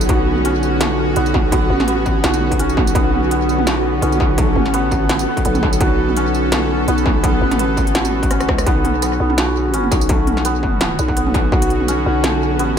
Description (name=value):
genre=half-time drum and bass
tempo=168 BPM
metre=4/4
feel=swing 55% on 16ths, half-time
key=B minor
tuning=A4 = 439 Hz
part: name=bowed-like drone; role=sustained chords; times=0.0-12.8 s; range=D3 to A4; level=-22 LUFS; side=equal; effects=built-in reverb, sidechain pumping
part: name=santur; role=arpeggios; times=0.0-12.8 s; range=A3 to F#4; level=-21 LUFS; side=equal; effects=tape echo
part: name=growling 808-style bass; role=bass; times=0.0-12.8 s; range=A1 to C#2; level=-19 LUFS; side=equal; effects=none
part: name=industrial drum kit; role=drums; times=0.0-12.7 s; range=hi-hat, rim click, snare drum, tambourine, toms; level=-22 LUFS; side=right 1 dB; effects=overdrive, studio reverb, tape echo
part: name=flickering grainy texture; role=texture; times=0.0-8.7 s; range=F#4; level=-27 LUFS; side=right 5 dB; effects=none
part: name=electronic kick drum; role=drums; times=0.1-11.6 s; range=none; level=-18 LUFS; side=equal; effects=distortion, overdrive, studio reverb
room=light reverb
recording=echo-heavy mix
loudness=-14 LUFS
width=side -8 dB against mid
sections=0.0-8.7 A section; 8.7-12.8 A section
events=drop 0.0-8.7, 8.7-12.8; drum fill 8.3-8.7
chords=0.0 Bmadd9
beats=| 0.09 0.45 0.81 1.17 | 1.52 1.88 2.24 2.59 | 2.95 3.31 3.67 4.02 | 4.38 4.74 5.09 5.45 | 5.81 6.17 6.52 6.88 | 7.24 7.59 7.95 8.31 | 8.66 9.02 9.38 9.74 | 10.09 10.45 10.81 11.16 | 11.52 11.88 12.24 12.59